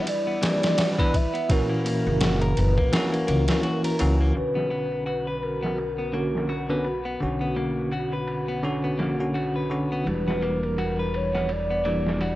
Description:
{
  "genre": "trip hop",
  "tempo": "84 BPM",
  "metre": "4/4",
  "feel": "swing 58% on 16ths",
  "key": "B harmonic minor",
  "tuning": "A4 = 440 Hz",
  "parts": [
    { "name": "pure breathy sine lead", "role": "melody", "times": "0.0-12.4 s", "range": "A#4 to E5", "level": "-28 LUFS", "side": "equal", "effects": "wide subtle chorus, tape echo" },
    { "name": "bell-like tine electric piano", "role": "accompaniment", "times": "0.0-12.4 s", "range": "A#2 to B4", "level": "-27 LUFS", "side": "equal", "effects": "harmonic tremolo, low-pass filter" },
    { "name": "dark analog pad", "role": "sustained chords", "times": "0.0-12.4 s", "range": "E3 to F#5", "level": "-36 LUFS", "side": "equal", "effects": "chorus" },
    { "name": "clean electric guitar", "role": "arpeggios", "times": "0.0-12.4 s", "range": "A#3 to B4", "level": "-32 LUFS", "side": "left 2 dB", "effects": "low-pass filter, tape echo" },
    { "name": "trip hop sampler-style drum kit", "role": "drums", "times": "0.1-12.4 s", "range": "kick drum, ride cymbal, snare drum", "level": "-29 LUFS", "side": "equal", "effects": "low-pass filter on kick, low-pass filter on cymbals, low-pass filter on snare" },
    { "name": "upright bass", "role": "bass", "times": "2.1-12.4 s", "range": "E1 to C#2", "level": "-29 LUFS", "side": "equal", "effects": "none" }
  ],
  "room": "little or no reverb",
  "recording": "dry, gritty hardware recording, cassette tape",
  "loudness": "-22 LUFS",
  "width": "side -16 dB against mid",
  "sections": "0.0-4.4 A section; 4.4-12.4 B section",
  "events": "kick drops out 2.9-4.4; filter sweep on tine electric piano 4.4-12.4",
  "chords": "0.0 Em7; 1.5 F#7; 4.4 Bmadd9; 10.1 Em7"
}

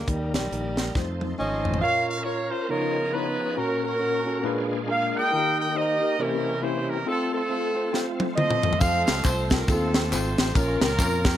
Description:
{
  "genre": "uptempo gospel",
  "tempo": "138 BPM",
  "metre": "4/4",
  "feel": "swing 60% on 8ths",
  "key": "Bb harmonic minor",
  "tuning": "A4 = 438 Hz",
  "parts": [
    { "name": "breathy tenor saxophone", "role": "melody", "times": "0.0-1.8 s", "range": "G3 to C#4", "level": "-32 LUFS", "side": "equal", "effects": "none" },
    { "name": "bright tonewheel organ", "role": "sustained chords", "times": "0.0-11.4 s", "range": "Bb2 to C5", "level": "-34 LUFS", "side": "right 3 dB", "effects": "fast rotary speaker, overdrive, chorus vibrato" },
    { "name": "fingered electric bass", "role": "bass", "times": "0.0-1.8, 8.8-11.4 s", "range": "G#1 to F2", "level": "-29 LUFS", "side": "equal", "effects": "none" },
    { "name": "tine electric piano", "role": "accompaniment", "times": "0.1-11.4 s", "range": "Bb2 to Bb5", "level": "-30 LUFS", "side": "left 3 dB", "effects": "medium stereo tremolo" },
    { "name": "tight funk drum kit", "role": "drums", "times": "0.1-1.8, 7.9-11.3 s", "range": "hi-hat, kick drum, ride cymbal, snare drum, toms", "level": "-25 LUFS", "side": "equal", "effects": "none" },
    { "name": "clear horn section", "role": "melody", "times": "1.4-11.4 s", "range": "C4 to G5", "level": "-25 LUFS", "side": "right 1 dB", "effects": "tape echo" },
    { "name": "tambourine and handclaps", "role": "percussion", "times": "8.8-11.3 s", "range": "none", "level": "-35 LUFS", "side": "left 1 dB", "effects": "none" }
  ],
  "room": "light reverb",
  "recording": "none",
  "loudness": "-22 LUFS",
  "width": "side -11 dB against mid",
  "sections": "0.0-1.8 A section; 1.8-11.4 B section",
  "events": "drum fill 1.0-1.8, 7.9-8.8",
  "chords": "0.1 D#; 1.0 F7; 1.8 Bbm; 2.7 Db13; 3.6 Gb/Bb; 4.5 Bb7b9; 5.3 Eb; 6.2 C7b9; 7.1 F; 10.6 Bbm"
}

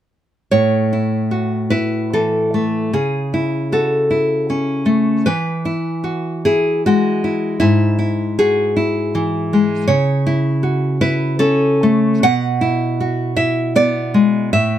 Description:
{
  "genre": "romantic piece for solo classical guitar",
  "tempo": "77 BPM",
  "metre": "3/4",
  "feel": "uneven beats, rubato",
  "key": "A major",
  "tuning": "A4 = 439 Hz",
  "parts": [
    { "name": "nylon-string guitar", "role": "solo", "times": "0.5-14.8 s", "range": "G#2 to F#5", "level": "-14 LUFS", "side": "equal", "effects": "none" }
  ],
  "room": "light reverb",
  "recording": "none",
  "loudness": "-15 LUFS",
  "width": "side -11 dB against mid",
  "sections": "0.5-14.8 A section",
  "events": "none",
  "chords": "0.5 A; 2.9 A/C#; 5.3 E; 7.6 E/G#; 9.9 A/C#; 12.2 E7/B"
}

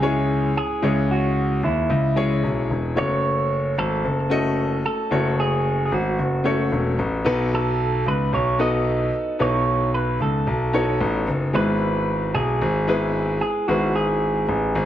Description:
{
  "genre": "pop",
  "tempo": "112 BPM",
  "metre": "4/4",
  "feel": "straight",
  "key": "unclear",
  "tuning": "A4 = 440 Hz",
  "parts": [
    { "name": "electric guitar with an envelope filter", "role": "melody", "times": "0.0-14.9 s", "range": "E4 to D#5", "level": "-24 LUFS", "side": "right 3 dB", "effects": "none" },
    { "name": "clear upright piano", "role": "accompaniment", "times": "0.0-14.9 s", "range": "G#2 to D#5", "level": "-25 LUFS", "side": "left 2 dB", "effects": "none" },
    { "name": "warm concert grand piano", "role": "bass", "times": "0.0-14.9 s", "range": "E1 to D#2", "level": "-22 LUFS", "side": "left 1 dB", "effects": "none" }
  ],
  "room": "moderate large studio reverb, RT60 1.2 s",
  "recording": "none",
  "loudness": "-19 LUFS",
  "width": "side -11 dB against mid",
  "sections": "0.0-14.9 A section",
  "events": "none",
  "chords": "0.0 C#m; 3.0 F#m; 7.3 B7; 11.5 E/G#"
}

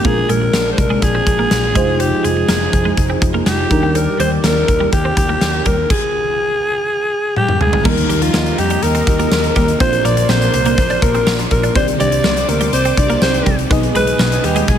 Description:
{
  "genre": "1980s-style pop",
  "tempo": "123 BPM",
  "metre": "4/4",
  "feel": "straight",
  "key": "Eb major",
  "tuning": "A4 = 440 Hz",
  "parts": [
    { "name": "raspy alto saxophone", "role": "melody", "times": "0.0-14.8 s", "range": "F4 to D5", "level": "-18 LUFS", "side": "equal", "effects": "none" },
    { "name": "FM electric piano with soft pad layer", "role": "accompaniment", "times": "0.0-14.8 s", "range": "Bb2 to Eb5", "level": "-22 LUFS", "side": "left 1 dB", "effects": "chorus, phaser" },
    { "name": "warm analog pad", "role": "sustained chords", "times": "0.0-14.8 s", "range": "Eb3 to Eb6", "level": "-25 LUFS", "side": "equal", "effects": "chorus" },
    { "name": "twelve-string electric guitar", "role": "riff", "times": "0.0-14.7 s", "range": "G3 to D4", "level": "-24 LUFS", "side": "right 4 dB", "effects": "analog chorus" },
    { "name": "picked electric bass", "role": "bass", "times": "0.0-14.8 s", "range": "F1 to F2", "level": "-20 LUFS", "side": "equal", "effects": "none" },
    { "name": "huge arena drum kit", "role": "drums", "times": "0.0-14.8 s", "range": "crash cymbal, hi-hat, kick drum, snare drum, tambourine, toms", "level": "-18 LUFS", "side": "equal", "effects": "none" },
    { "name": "buzzing marimba with medium hard mallets", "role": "second line", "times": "7.4-14.8 s", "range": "F3 to D4", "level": "-25 LUFS", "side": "left 2 dB", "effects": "none" },
    { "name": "biting overdriven guitar", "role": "accompaniment", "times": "7.8-14.8 s", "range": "Ab2 to Eb4", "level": "-27 LUFS", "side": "right 1 dB", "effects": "none" }
  ],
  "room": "light reverb, small room ambience",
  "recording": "none",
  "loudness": "-12 LUFS",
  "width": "side -9 dB against mid",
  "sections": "0.0-7.9 A section; 7.9-14.8 B section",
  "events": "drum fill 7.4-7.9",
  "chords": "0.0 Bb7; 1.8 Fm7; 3.7 Ebmaj7; 5.9 N.C.; 7.9 Eb; 9.8 Bbadd9; 11.8 Cmadd9; 13.7 Abm/Cb"
}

